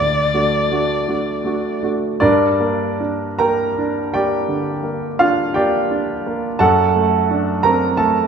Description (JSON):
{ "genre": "classical, romantic duo for viola and grand piano", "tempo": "48-59 BPM (dotted quarters)", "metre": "12/8", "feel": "rubato", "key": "G minor", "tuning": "A4 = 440 Hz", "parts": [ { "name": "warm viola", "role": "melody", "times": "0.0-1.8 s", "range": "D5", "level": "-20 LUFS", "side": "left 1 dB", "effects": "none" }, { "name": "clear grand piano", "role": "accompaniment", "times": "0.0-8.3 s", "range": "D2 to Bb5", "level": "-16 LUFS", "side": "right 2 dB", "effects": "none" } ], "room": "moderate scoring stage reverb, RT60 2.0 s", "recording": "minimal, uncompressed stereo recording", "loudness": "-15 LUFS", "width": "side -6 dB against mid", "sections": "0.0-2.2 A section; 2.2-8.3 B section", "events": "none", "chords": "0.0 D; 2.2 Gm; 6.6 D7/F#" }